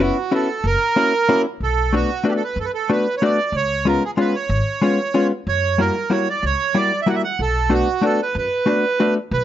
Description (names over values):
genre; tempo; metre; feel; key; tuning
musette waltz; 186 BPM; 3/4; straight; B minor; A4 = 440 Hz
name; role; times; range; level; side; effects
accordion; melody; 0.0-9.4 s; F#4 to F#5; -20 LUFS; right 5 dB; plate reverb
hollow-body jazz guitar; accompaniment; 0.0-9.2 s; G3 to F#4; -19 LUFS; left 3 dB; plate reverb
upright bass; bass; 0.0-9.4 s; F#1 to F#2; -23 LUFS; equal; none
room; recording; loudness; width
moderate studio ambience, RT60 0.5 s; rough home demo mix, nothing above 7.5 kHz; -17 LUFS; side -11 dB against mid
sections
0.0-9.3 A section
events
none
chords
0.0 F#7sus4; 0.6 F#7; 1.6 Bm7; 3.5 C#7; 5.5 F#7b9; 7.4 Bm7